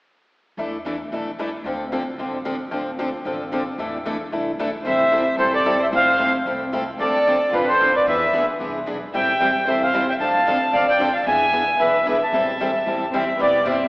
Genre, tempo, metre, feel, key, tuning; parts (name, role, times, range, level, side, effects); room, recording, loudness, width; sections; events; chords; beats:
acoustic string swing (jazz manouche); 225 BPM; 4/4; swing 56% on 8ths; A minor; A4 = 442 Hz
picked steel-string acoustic guitar; accompaniment; 0.6-13.8 s; C3 to B4; -29 LUFS; equal
picked swing-style acoustic guitar; accompaniment; 0.6-13.8 s; C3 to A4; -26 LUFS; left 1 dB
upright bass; bass; 0.6-13.9 s; E1 to G2; -41 LUFS; equal
warm violin; second line; 4.8-13.9 s; B3 to F5; -24 LUFS; equal
accordion; melody; 4.9-13.9 s; B4 to A5; -18 LUFS; equal
wet church reverb, RT60 2.8 s; recorded in a church or concert hall, AM radio sound; -18 LUFS; side -24 dB against mid
0.6-4.9 A section; 4.9-13.4 B section
0.6 E7sus4; 1.6 Dm7; 3.8 E7sus4; 4.9 Am7; 5.9 Fmaj7; 7.0 Dm7; 8.1 E7; 9.1 Am7; 10.2 Dm7; 11.3 E7; 12.3 Am7
| 0.57 0.84 1.11 1.38 | 1.64 1.91 2.18 2.45 | 2.71 2.98 3.25 3.52 | 3.78 4.05 4.32 4.59 | 4.85 5.12 5.39 5.65 | 5.92 6.19 6.46 6.72 | 6.99 7.26 7.52 7.79 | 8.06 8.32 8.59 8.86 | 9.12 9.39 9.66 9.93 | 10.19 10.46 10.72 10.99 | 11.26 11.52 11.79 12.06 | 12.32 12.59 12.86 13.12 | 13.39 13.65